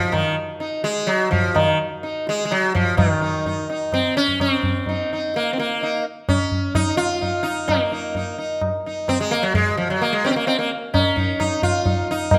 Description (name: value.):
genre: indian classical, Hindustani.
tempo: 128 BPM.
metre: 5/4.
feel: straight.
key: Eb raga kafi.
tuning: A4 = 440 Hz.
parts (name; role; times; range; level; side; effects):
sitar; melody; 0.0-12.4 s; Eb3 to F4; -23 LUFS; equal; none.
tabla; percussion; 0.1-12.4 s; none; -25 LUFS; equal; none.
room: moderate recital hall reverb, RT60 1.3 s.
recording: none.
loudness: -21 LUFS.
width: mono.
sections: 0.0-3.0 A section; 3.0-12.4 B section.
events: speeding up 0.0-12.4.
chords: none.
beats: 0.12 | 0.60 1.08 1.55 2.03 2.51 | 2.98 3.46 3.93 4.40 4.87 | 5.34 5.81 6.28 6.75 7.22 | 7.69 8.15 8.62 9.08 9.55 | 10.01 10.47 10.94 11.40 11.86 | 12.32.